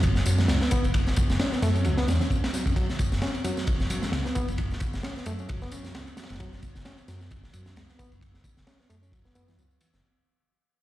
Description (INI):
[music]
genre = breakbeat, breaks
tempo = 132 BPM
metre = 4/4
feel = swing 56% on 16ths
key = unclear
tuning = A4 = 440 Hz
[part]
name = dark detuned saw bass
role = bass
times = 0.0-10.0 s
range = F#1 to F#2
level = -27 LUFS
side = equal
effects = none
[part]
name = crunchy breakbeat drum kit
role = drums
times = 0.0-10.0 s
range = kick drum, ride cymbal, snare drum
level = -28 LUFS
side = equal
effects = none
[part]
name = tambourine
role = drums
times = 0.0-10.0 s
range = none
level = -42 LUFS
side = left 2 dB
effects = none
[part]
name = reed electric piano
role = riff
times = 0.3-9.9 s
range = E3 to C#4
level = -34 LUFS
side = equal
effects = fast tremolo, vintage 12-bit sampler grit, low-pass filter, tape echo
[part]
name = congas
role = percussion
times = 0.4-9.6 s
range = none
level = -38 LUFS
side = right 4 dB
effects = none
[sound]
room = small room ambience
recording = played on a big sound system in a bare room, stone room reverb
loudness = -24 LUFS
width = side -15 dB against mid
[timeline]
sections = 0.0-10.0 A section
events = fade-out 0.0-10.0; filter sweep on reed electric piano 0.0-10.0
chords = 0.0 F#5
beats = 0.03 0.49 | 0.94 1.40 1.85 2.31 | 2.76 3.22 3.67 4.12 | 4.58 5.03 5.49 5.94 | 6.40 6.85 7.31 7.76 | 8.22 8.67 9.12 9.58